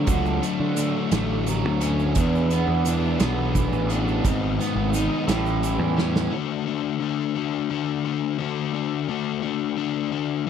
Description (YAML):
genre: indie rock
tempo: 58 BPM (dotted quarters)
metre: 6/8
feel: straight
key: D lydian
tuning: A4 = 441 Hz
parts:
  - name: biting overdriven guitar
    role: riff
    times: 0.0-6.3 s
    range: E2 to D#4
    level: -28 LUFS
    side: right 10 dB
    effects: lush chorus, tape echo
  - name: crunchy overdriven guitar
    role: riff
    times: 0.0-10.5 s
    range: G#2 to G#4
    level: -25 LUFS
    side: left 10 dB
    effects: none
  - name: fuzz picked electric bass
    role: bass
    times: 0.0-6.3 s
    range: G#1 to D3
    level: -24 LUFS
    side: right 2 dB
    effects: overdrive
  - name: loose indie drum kit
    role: drums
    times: 0.1-6.3 s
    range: hi-hat, kick drum, snare drum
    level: -26 LUFS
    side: right 2 dB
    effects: none
  - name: egg shaker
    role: percussion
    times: 0.1-6.2 s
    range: none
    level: -41 LUFS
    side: right 26 dB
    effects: none
room: little or no reverb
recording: none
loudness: -21 LUFS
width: side -8 dB against mid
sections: 0.0-6.3 A section; 6.3-10.5 B section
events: drum fill 6.0-6.3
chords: 0.0 Dmaj7; 2.2 E7; 4.2 G#m; 5.3 A7; 6.3 D